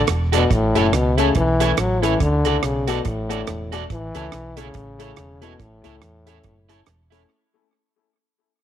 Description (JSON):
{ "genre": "ska", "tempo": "141 BPM", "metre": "4/4", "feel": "swing 59% on 8ths", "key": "A major", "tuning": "A4 = 440 Hz", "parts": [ { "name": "warm trombone", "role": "melody", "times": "0.0-6.9 s", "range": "A2 to F#3", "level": "-23 LUFS", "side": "left 2 dB", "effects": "none" }, { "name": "warm upright piano", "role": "stabs", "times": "0.0-7.2 s", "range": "A3 to A4", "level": "-27 LUFS", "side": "left 9 dB", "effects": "tape echo" }, { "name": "hollow-body short-scale fingered electric bass", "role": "bass", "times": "0.1-7.2 s", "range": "E1 to E2", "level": "-23 LUFS", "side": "right 1 dB", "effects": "none" }, { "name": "deep reggae drum kit", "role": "drums", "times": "0.1-7.2 s", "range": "hi-hat, kick drum, rim click", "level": "-25 LUFS", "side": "right 4 dB", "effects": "tape echo" }, { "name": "electric guitar at the edge of break-up", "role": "accompaniment", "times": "0.3-7.2 s", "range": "E4 to D5", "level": "-26 LUFS", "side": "right 10 dB", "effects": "warbly pitch drift" } ], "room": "light reverb, small room ambience", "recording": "1960s-style stereo with parts hard left and right", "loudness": "-17 LUFS", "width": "side -10 dB against mid", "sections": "0.0-7.3 A section", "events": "fade-out 0.0-7.3", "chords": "0.0 D; 0.5 A; 2.2 D; 3.9 A", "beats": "0.08 | 0.51 0.93 1.35 1.78 | 2.21 2.63 3.06 3.48 | 3.90 4.33 4.75 5.18 | 5.60 6.02 6.45 6.87" }